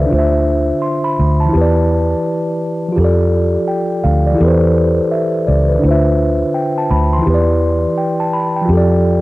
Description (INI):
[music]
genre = lo-fi hip hop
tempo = 84 BPM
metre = 4/4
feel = swing 64% on 16ths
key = D dorian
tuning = A4 = 440 Hz
[part]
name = mellow tine electric piano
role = accompaniment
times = 0.0-9.2 s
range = D3 to C6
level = -14 LUFS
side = equal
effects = medium stereo tremolo, cassette tape
[part]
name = vintage muted fingered electric bass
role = bass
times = 0.0-9.2 s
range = C#2 to F2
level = -14 LUFS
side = equal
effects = transformer saturation
[sound]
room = light reverb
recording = dry, gritty hardware recording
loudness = -12 LUFS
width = side -19 dB against mid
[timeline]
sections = 0.0-9.2 A section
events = none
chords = 0.1 Dm7; 1.5 Em7; 3.0 F6; 4.4 Am9/E; 5.8 Dm7; 7.3 Em7; 8.7 F6